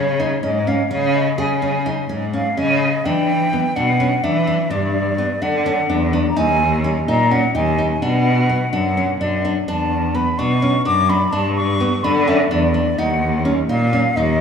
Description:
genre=contemporary instrumental, chamber music in an uneven meter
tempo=254 BPM (eighths)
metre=7/8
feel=straight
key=unclear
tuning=A4 = 443 Hz
part: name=mellow hollow silver concert flute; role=melody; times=0.0-14.4 s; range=C#5 to D6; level=-21 LUFS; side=equal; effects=none
part: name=nylon-string guitar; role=arpeggios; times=0.0-14.3 s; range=B3 to G#4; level=-22 LUFS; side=left 1 dB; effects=none
part: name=rich cello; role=bass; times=0.0-14.4 s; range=D#2 to E3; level=-19 LUFS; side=equal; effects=none
room=wet concert hall reverb, RT60 2.2 s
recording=small room ambience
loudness=-16 LUFS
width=side -6 dB against mid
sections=0.0-3.1 A section; 3.1-14.4 B section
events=none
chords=0.0 C#sus2; 3.1 Em7; 4.7 G5; 6.4 D#5; 8.0 Bm; 9.7 E5; 11.3 G5; 13.0 D#m

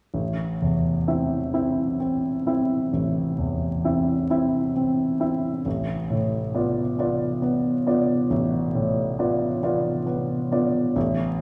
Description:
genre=classical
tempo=45 BPM (dotted quarters)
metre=12/8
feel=rubato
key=A minor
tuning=A4 = 440 Hz
part: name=clear concert grand piano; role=accompaniment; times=0.1-11.4 s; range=A1 to E5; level=-24 LUFS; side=equal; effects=none
room=wet concert hall reverb, RT60 1.8 s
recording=recorded in a church or concert hall, vinyl crackle, small room ambience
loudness=-24 LUFS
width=mono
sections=0.1-11.4 A section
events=none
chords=0.1 Am; 5.7 Bm7b5/A

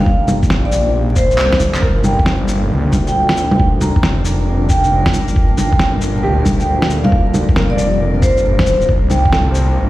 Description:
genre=future garage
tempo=136 BPM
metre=4/4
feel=swing 66% on 16ths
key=G minor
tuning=A4 = 440 Hz
part: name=vibraphone with medium mallets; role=melody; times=0.0-9.3 s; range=C5 to Bb5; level=-19 LUFS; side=equal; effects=tape echo
part: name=clear upright piano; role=accompaniment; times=0.0-9.9 s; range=G4 to D5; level=-26 LUFS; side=right 2 dB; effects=vintage 12-bit sampler grit, sidechain pumping, analog delay
part: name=granular cloud pad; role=sustained chords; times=0.0-9.9 s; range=Bb2 to Eb4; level=-23 LUFS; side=left 1 dB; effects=built-in reverb, sidechain pumping
part: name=swelling detuned saw bass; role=bass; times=0.0-9.9 s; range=D1 to D2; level=-17 LUFS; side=equal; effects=sidechain pumping
part: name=electronic kick drum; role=drums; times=0.1-9.3 s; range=none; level=-15 LUFS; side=equal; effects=none
part: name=electronic bongos, shaker, snare drum and handclaps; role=drums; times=0.3-9.7 s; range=none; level=-18 LUFS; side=equal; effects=none
part: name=drifting glass-harmonics texture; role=texture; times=3.0-9.9 s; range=Bb3 to Bb4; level=-29 LUFS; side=equal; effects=chorus, built-in reverb
room=digital ambience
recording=played on a big sound system in a bare room, large studio reverb, vinyl crackle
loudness=-12 LUFS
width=side -16 dB against mid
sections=0.0-9.9 A section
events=drum fill 1.4-1.8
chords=0.0 Cm7; 1.8 Gm; 8.9 Cm7

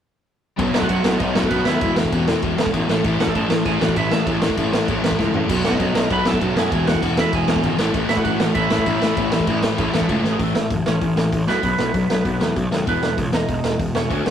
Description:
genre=punk rock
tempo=196 BPM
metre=4/4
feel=straight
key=unclear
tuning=A4 = 440 Hz
part: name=crunchy overdriven guitar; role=riff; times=0.6-10.2 s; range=E2 to B3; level=-28 LUFS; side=right 1 dB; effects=none
part: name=overdriven semi-hollow guitar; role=riff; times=0.6-14.3 s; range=E2 to D4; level=-23 LUFS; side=left 5 dB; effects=none
part: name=sludgy distorted guitar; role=riff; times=0.6-10.4 s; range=E2 to B3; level=-28 LUFS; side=right 7 dB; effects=overdrive
part: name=fuzz picked electric bass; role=bass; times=0.6-14.3 s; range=E1 to F#2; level=-24 LUFS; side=right 1 dB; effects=overdrive
part: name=raw garage drum kit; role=drums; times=0.6-14.3 s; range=crash cymbal, hi-hat, kick drum, snare drum, toms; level=-22 LUFS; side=right 1 dB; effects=none
part: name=lightly driven lead guitar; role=melody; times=0.7-14.3 s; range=A3 to B5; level=-25 LUFS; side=right 4 dB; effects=none
room=light reverb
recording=rough rehearsal-room recording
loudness=-17 LUFS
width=side -9 dB against mid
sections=0.6-10.4 A section; 10.4-14.3 B section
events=drum fill 5.2-5.5, 10.2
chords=0.6 B; 1.8 E5; 2.9 A5; 5.5 B; 6.7 E; 7.8 A5; 10.4 A; 11.5 B5; 12.9 E5

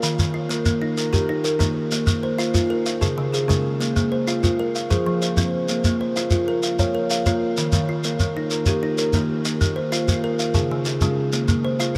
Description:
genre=southern african traditional, mbira-style interlocking cycle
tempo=127 BPM (dotted quarters)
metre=12/8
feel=straight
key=Bb dorian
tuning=A4 = 438 Hz
part: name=kalimba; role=arpeggios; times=0.0-12.0 s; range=Db3 to F5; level=-26 LUFS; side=equal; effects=none
part: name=kalimba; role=arpeggios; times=0.0-12.0 s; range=Db3 to F5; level=-27 LUFS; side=equal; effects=analog delay
part: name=shekere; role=percussion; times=0.0-11.9 s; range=none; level=-25 LUFS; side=equal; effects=none
room=moderate huge ambient reverb, RT60 9.1 s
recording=in a vast, echoing space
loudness=-22 LUFS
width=mono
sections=0.0-12.0 A section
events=none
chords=0.0 Eb; 1.9 Bb5; 2.9 Db; 3.8 Bbm; 4.8 Fm; 5.7 Bbm; 7.6 Eb; 9.5 Bb5; 10.4 Db; 11.3 Bbm

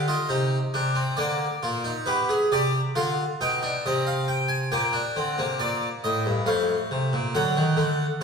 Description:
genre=classical, baroque-style 3-part fugue for harpsichord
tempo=68 BPM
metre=3/4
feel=straight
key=unclear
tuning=A4 = 442 Hz
part: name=harpsichord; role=solo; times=0.0-8.2 s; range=F2 to Ab5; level=-22 LUFS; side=equal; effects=none
room=wet recital hall reverb, RT60 1.6 s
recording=recorded in a church or concert hall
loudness=-22 LUFS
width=side -5 dB against mid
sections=0.0-8.2 A section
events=none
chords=0.0 Cm; 1.2 Bb/D; 2.1 G7/B; 3.8 Cm; 4.7 Gm/Bb; 6.5 F; 7.3 D

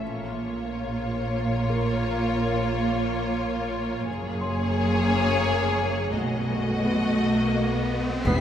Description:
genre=cinematic, suspense film score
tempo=88 BPM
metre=3/4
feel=straight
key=unclear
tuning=A4 = 441 Hz
part: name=rich symphonic violin section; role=melody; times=0.0-8.4 s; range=C#5 to E5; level=-31 LUFS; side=left 4 dB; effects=none
part: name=warm symphonic violin section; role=second line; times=0.0-8.4 s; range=E#4 to G#4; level=-30 LUFS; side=left 1 dB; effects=none
part: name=warm symphonic viola section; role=accompaniment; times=0.0-8.4 s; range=A3 to B3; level=-28 LUFS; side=right 1 dB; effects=none
part: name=rich symphonic double bass section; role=bass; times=0.0-8.3 s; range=E1 to B1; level=-31 LUFS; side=right 1 dB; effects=none
part: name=warm symphonic cello section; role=bass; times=0.0-8.3 s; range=E2 to B2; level=-30 LUFS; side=right 2 dB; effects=none
part: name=felt-muted upright piano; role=texture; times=1.7-8.3 s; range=B3 to B#5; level=-38 LUFS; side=left 2 dB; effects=none
part: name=riser and impact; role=sound effects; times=5.7-8.4 s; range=none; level=-34 LUFS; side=equal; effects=none
part: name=mellow trombone section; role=sustained chords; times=8.3-8.4 s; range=none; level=barely audible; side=none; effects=none
part: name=warm French horn section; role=sustained chords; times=8.3-8.4 s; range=B3 to G4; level=-33 LUFS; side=left 3 dB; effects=none
part: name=taiko ensemble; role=drums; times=8.3-8.4 s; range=none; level=-30 LUFS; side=left 1 dB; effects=none
part: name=timpani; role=percussion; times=8.3-8.4 s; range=E2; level=-22 LUFS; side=left 1 dB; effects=none
part: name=rich symphonic violin section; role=texture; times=8.3-8.4 s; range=B6 to C7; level=-33 LUFS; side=left 2 dB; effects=none
room=wet church reverb, RT60 3.3 s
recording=none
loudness=-23 LUFS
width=side -9 dB against mid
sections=0.0-8.3 A section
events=riser 5.7-8.3; impact 8.3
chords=0.0 A#m; 4.1 F#add9; 6.1 B7

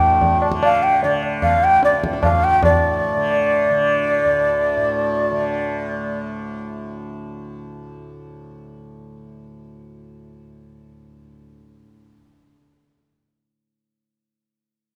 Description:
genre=indian classical, Hindustani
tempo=150 BPM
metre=7/4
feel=straight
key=unclear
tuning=A4 = 435 Hz
part: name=breathy mellow bansuri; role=melody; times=0.0-6.2 s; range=D5 to G5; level=-19 LUFS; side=equal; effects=none
part: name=tanpura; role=drone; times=0.0-12.5 s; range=D2 to D3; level=-30 LUFS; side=equal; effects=none
part: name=tabla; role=percussion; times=0.2-2.8 s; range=none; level=-23 LUFS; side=equal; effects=none
room=moderate concert hall reverb, RT60 2.1 s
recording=none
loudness=-18 LUFS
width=mono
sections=0.0-2.6 A section; 2.6-5.4 B section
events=none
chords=none

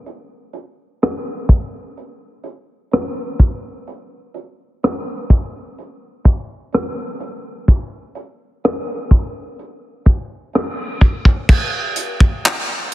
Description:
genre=R&B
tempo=63 BPM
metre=4/4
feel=straight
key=none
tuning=none
part: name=tight funk drum kit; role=drums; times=0.1-12.9 s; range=crash cymbal, handclaps, hi-hat, kick drum, rim click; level=-15 LUFS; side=equal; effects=none
room=light reverb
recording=heavily compressed radio sound, low-pass filter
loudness=-15 LUFS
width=side -16 dB against mid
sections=0.0-11.5 A section; 11.5-12.9 B section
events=filter sweep 0.0-11.5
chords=none

